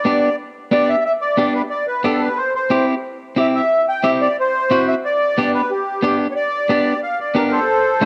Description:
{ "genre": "latin", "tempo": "180 BPM", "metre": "4/4", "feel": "straight", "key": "G major", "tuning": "A4 = 440 Hz", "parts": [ { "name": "accordion", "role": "melody", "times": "0.0-8.1 s", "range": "G4 to G5", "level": "-20 LUFS", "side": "equal", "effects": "light tremolo tuning, cassette tape" }, { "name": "electric guitar at the edge of break-up", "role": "accompaniment", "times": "0.0-8.1 s", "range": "A3 to G4", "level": "-22 LUFS", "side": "equal", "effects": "cassette tape" } ], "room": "moderate spring reverb, RT60 2.4 s", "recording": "home recording on cassette", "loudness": "-18 LUFS", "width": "mono", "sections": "0.0-6.4 A section; 6.4-8.1 B section", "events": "accordion solo 6.4-8.1", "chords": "0.0 G; 2.4 C; 5.0 G", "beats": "0.05 0.38 0.71 | 1.04 1.38 1.71 2.04 | 2.38 2.71 3.04 3.37 | 3.71 4.04 4.37 4.70 | 5.04 5.37 5.70 6.03 | 6.36 6.69 7.03 7.36 | 7.69 8.02" }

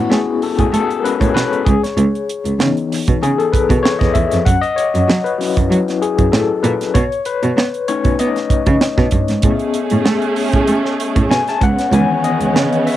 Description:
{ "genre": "polished 1980s jazz-funk pop", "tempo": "96 BPM", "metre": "4/4", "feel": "swing 54% on 16ths", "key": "C# minor", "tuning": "A4 = 440 Hz", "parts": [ { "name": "overdriven tine electric piano", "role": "accompaniment", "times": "0.0-13.0 s", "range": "D#3 to A5", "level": "-17 LUFS", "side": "left 6 dB", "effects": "medium tremolo, wide subtle chorus, cassette tape" }, { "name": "warm cello", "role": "bass", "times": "0.0-12.6 s", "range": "C#2 to B3", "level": "-17 LUFS", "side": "right 2 dB", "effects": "none" }, { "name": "tight funk drum kit", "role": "drums", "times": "0.1-13.0 s", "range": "hi-hat, kick drum, snare drum", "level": "-17 LUFS", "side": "right 2 dB", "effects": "cassette tape" }, { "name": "warm studio string section", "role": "sustained chords", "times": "9.4-13.0 s", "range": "C#3 to G#4", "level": "-19 LUFS", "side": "right 3 dB", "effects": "cassette tape" } ], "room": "light reverb", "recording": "home recording on cassette", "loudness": "-13 LUFS", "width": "side -13 dB against mid", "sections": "0.0-13.0 A section", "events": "tine electric piano solo 0.0-13.0", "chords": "0.0 Amaj9; 1.7 C#m9; 4.5 F#5; 7.0 B9; 9.4 Amaj9; 11.6 C#m9", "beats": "0.11 0.73 1.35 | 1.98 2.60 3.22 3.84 | 4.46 5.09 5.71 6.33 | 6.95 7.57 8.20 8.82 | 9.44 10.06 10.68 11.30 | 11.93 12.55" }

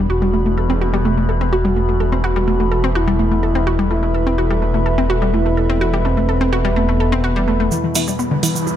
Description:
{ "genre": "melodic techno", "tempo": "126 BPM", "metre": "4/4", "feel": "straight", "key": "unclear", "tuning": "A4 = 440 Hz", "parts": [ { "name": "dark analog pad", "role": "sustained chords", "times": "0.0-8.8 s", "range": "E3 to B5", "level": "-24 LUFS", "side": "equal", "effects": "chorus" }, { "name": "analog pluck", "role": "arpeggios", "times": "0.0-8.8 s", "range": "D3 to A4", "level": "-20 LUFS", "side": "left 1 dB", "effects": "chorus, dub echo" }, { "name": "swelling detuned saw bass", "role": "bass", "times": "0.0-7.7 s", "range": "E1", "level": "-19 LUFS", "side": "equal", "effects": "none" }, { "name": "overtone-sweeping drone", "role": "drone", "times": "0.0-8.8 s", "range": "E2 to B2", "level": "-26 LUFS", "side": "equal", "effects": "chorus, built-in reverb" }, { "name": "expressive synth lead", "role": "melody", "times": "0.1-8.3 s", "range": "B3 to F#4", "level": "-23 LUFS", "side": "equal", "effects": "chorus, dub echo" }, { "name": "egg shaker", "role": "percussion", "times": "7.7-8.8 s", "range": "none", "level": "-24 LUFS", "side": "right 6 dB", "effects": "none" }, { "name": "riser", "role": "sound effects", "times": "8.2-8.8 s", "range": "none", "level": "-33 LUFS", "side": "right 1 dB", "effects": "none" }, { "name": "filtered dub chord stab", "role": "stabs", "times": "8.0-8.8 s", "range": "E3 to E4", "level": "-23 LUFS", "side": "left 2 dB", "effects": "ensemble chorus, dub echo" }, { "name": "electronic hi-hat", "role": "drums", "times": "8.0-8.5 s", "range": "none", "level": "-22 LUFS", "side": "right 5 dB", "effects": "high-pass filter on hats, low-pass filter on hats" } ], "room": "light reverb", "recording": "dark, warm production", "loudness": "-15 LUFS", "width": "side -10 dB against mid", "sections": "0.0-7.7 A section; 7.7-8.8 B section", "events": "filter sweep on synth arpeggio sound 0.0-7.7; build-up 7.7-8.8; filter sweep 7.7-8.8; riser 8.2-8.8", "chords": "0.1 Asus2/E; 7.7 Em", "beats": "| 0.10 0.57 1.05 1.52 | 2.00 2.48 2.95 3.43 | 3.91 4.38 4.86 5.33 | 5.81 6.29 6.76 7.24 | 7.71 8.19 8.67" }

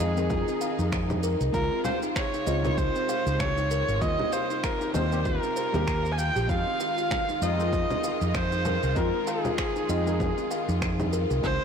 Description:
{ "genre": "organic downtempo", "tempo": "97 BPM", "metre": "4/4", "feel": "swing 57% on 16ths", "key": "F minor", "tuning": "A4 = 439 Hz", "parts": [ { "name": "rich kamancheh", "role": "melody", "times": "0.0-11.6 s", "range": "Ab4 to Ab5", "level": "-29 LUFS", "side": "right 2 dB", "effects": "tape echo" }, { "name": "deep mellow chord stab", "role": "accompaniment", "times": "0.0-11.6 s", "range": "C3 to Ab4", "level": "-35 LUFS", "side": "left 4 dB", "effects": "chorus, sidechain pumping, tape echo" }, { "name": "clear symphonic string section", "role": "sustained chords", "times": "0.0-11.6 s", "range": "C3 to F4", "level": "-38 LUFS", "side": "left 1 dB", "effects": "sidechain pumping" }, { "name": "kalimba", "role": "arpeggios", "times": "0.0-11.6 s", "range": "C4 to F5", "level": "-31 LUFS", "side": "left 1 dB", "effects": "tape echo" }, { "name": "mellow fretless electric bass", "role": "bass", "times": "0.0-11.6 s", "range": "Ab1 to F2", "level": "-28 LUFS", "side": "equal", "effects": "transformer saturation, sidechain pumping" }, { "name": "electronic shaker, congas and finger snaps", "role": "drums", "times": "0.2-11.6 s", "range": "none", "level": "-34 LUFS", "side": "equal", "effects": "overdrive, soft clipping on snare" }, { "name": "electronic kick drum", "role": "drums", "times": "0.3-11.6 s", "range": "none", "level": "-32 LUFS", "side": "equal", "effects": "overdrive" } ], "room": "moderate concert hall reverb, RT60 1.9 s", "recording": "blown-out, overdriven recording, overdrive", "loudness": "-24 LUFS", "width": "side -7 dB against mid", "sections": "0.0-11.6 A section", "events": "none", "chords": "0.0 Fm7; 1.5 Dbmaj7; 4.0 Eb69; 6.5 Fm7", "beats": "0.31 0.93 | 1.54 2.16 2.78 3.40 | 4.02 4.64 5.25 5.87 | 6.49 7.11 7.73 8.35 | 8.97 9.58 10.20 10.82 | 11.44" }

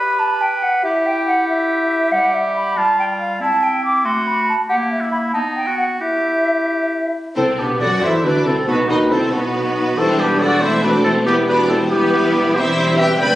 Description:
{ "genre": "quick classical-period movement for symphony orchestra", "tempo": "93 BPM (dotted quarters)", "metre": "6/8", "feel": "straight", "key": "E minor", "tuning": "A4 = 439 Hz", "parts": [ { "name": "clear oboe", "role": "second line", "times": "0.0-7.1 s", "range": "D#4 to B4", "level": "-22 LUFS", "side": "equal", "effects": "none" }, { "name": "mellow hollow silver concert flute", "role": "second line", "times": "0.0-13.4 s", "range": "D4 to D6", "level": "-19 LUFS", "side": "equal", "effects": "none" }, { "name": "warm clarinet", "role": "second line", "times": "0.0-13.4 s", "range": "G3 to G5", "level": "-24 LUFS", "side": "left 1 dB", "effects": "none" }, { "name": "rich chamber violin section", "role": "melody", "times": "7.4-13.4 s", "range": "B4 to B5", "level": "-26 LUFS", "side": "left 1 dB", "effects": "none" }, { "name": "rich chamber violin section", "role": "second line", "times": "7.4-13.4 s", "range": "B3 to B4", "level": "-23 LUFS", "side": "equal", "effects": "none" }, { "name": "rich chamber viola section", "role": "accompaniment", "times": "7.4-13.4 s", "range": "G3 to F#4", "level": "-22 LUFS", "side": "equal", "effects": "none" }, { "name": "mellow French horn section", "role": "sustained chords", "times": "7.4-13.4 s", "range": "B3 to A4", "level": "-24 LUFS", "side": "left 2 dB", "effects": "none" }, { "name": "warm trumpet", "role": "stabs", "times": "7.4-13.4 s", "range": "F#4 to G5", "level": "-20 LUFS", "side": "equal", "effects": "none" }, { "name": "clear studio double bass section", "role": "bass", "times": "7.4-13.4 s", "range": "E1 to F#2", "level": "-29 LUFS", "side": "right 1 dB", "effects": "none" }, { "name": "dark chamber cello section", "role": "bass", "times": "7.4-13.4 s", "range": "E2 to F#3", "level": "-25 LUFS", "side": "right 1 dB", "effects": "none" } ], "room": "wet recital hall reverb, RT60 1.6 s", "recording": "recorded on a phone in the room, club reverb, compression", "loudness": "-15 LUFS", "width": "side -15 dB against mid", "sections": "0.0-7.4 A section; 7.4-13.4 B section", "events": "none", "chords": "0.0 G; 0.8 Em; 2.1 N.C.; 2.8 Fadd9/G; 3.4 C; 4.1 Am69; 4.7 F#7b9/A# (rootless); 5.3 B; 6.0 Em; 7.4 D13; 8.0 Cmaj13; 8.7 B; 10.0 Em; 10.6 Am/E; 11.3 Em; 12.6 C/E", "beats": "0.20 | 0.84 1.49 | 2.13 2.77 | 3.41 4.05 | 4.69 5.34 | 6.01 6.69 | 7.37 8.03 | 8.68 9.33 | 9.98 10.62 | 11.27 11.91 | 12.55 13.19" }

